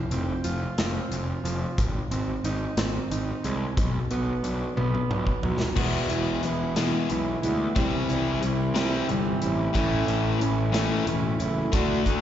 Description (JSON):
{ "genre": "quiet-loud alternative rock", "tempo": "60 BPM (dotted quarters)", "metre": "6/8", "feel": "straight", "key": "unclear", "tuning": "A4 = 440 Hz", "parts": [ { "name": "fingerpicked plugged-in steel-string acoustic guitar", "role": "arpeggios", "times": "0.0-12.2 s", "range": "E2 to F#4", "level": "-28 LUFS", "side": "right 3 dB", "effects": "digital delay, slapback echo" }, { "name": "fuzz picked electric bass", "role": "bass", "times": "0.1-12.2 s", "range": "E1 to D2", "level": "-29 LUFS", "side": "equal", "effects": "overdrive" }, { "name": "big rock drum kit", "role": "drums", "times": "0.1-12.2 s", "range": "crash cymbal, hi-hat, kick drum, snare drum, toms", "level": "-29 LUFS", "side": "equal", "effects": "none" }, { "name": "distorted electric guitar", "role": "riff", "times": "5.8-12.2 s", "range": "E2 to D4", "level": "-28 LUFS", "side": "left 7 dB", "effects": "distortion, slapback echo" } ], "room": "studio ambience", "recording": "live gig heard through the venue's PA, recital hall reverb, nothing above 7.7 kHz", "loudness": "-23 LUFS", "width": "side -10 dB against mid", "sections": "0.0-5.8 A section; 5.8-12.2 B section", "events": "drum fill 4.8-5.8", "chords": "0.0 F5; 1.8 G#; 3.8 Bm; 5.8 E; 7.8 C; 9.7 A" }